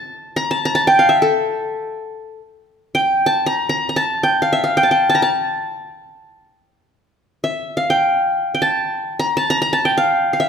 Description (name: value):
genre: Arabic maqam ensemble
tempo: free time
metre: none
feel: none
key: A maqam hijaz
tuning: A4 = 440 Hz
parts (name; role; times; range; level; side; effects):
- qanun; solo; 0.0-10.5 s; A4 to Bb5+25c; -15 LUFS; equal; none
room: moderate recital hall reverb, RT60 1.6 s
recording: recorded in a church or concert hall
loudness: -15 LUFS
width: side -7 dB against mid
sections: 0.0-2.6 A section; 2.6-10.5 A section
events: none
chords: none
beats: free time